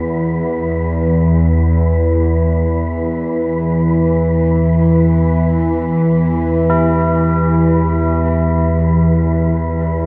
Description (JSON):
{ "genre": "dark ambient drone", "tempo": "free time", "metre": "none", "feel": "none", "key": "unclear", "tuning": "A4 = 440 Hz", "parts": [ { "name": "bowed-like drone", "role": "drone", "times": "0.0-10.1 s", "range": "E2 to E3", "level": "-15 LUFS", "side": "equal", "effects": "built-in reverb" }, { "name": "wind-like tuned noise texture", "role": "texture", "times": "0.0-10.1 s", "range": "B4", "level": "-27 LUFS", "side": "equal", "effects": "built-in reverb" }, { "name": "tubular bells", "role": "arpeggios", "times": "6.7-10.1 s", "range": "E4", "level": "-23 LUFS", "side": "equal", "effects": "diffuse ambient delay" } ], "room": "wet huge ambient reverb, RT60 8.1 s", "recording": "dark, warm production", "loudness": "-15 LUFS", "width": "mono", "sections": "0.0-10.1 A section", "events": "none", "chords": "0.0 E5", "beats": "free time" }